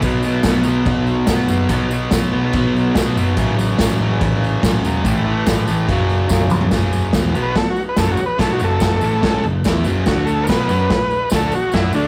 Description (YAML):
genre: garage rock duo or trio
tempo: 144 BPM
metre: 4/4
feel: straight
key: F# minor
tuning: A4 = 440 Hz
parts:
  - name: fuzz guitar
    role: riff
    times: 0.0-12.1 s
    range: E2 to F#4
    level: -22 LUFS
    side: equal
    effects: distortion
  - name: hollow-body short-scale picked electric bass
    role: bass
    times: 0.0-12.1 s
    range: E1 to F#2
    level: -23 LUFS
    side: equal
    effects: tube saturation
  - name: vintage drum kit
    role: drums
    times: 0.0-11.8 s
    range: crash cymbal, kick drum, snare drum, toms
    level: -22 LUFS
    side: equal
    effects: none
  - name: tambourine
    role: percussion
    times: 0.0-12.0 s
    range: none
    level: -39 LUFS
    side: equal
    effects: none
  - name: overdriven combo organ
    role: melody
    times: 7.4-12.1 s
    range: D4 to B4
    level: -22 LUFS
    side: equal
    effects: none
room: moderate stone room reverb, RT60 1.0 s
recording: rough rehearsal-room recording, warm saturation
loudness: -17 LUFS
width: mono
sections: 0.0-6.7 A section; 6.7-12.1 B section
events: drum fill 6.3-6.7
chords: 0.0 B5; 3.4 F#m/A; 5.0 A5; 5.9 F#5; 6.7 F#m; 10.1 D5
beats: | 0.03 0.45 0.87 1.28 | 1.70 2.12 2.54 2.96 | 3.37 3.79 4.21 4.63 | 5.04 5.46 5.88 6.30 | 6.71 7.13 7.55 7.97 | 8.39 8.81 9.22 9.64 | 10.06 10.48 10.90 11.31 | 11.73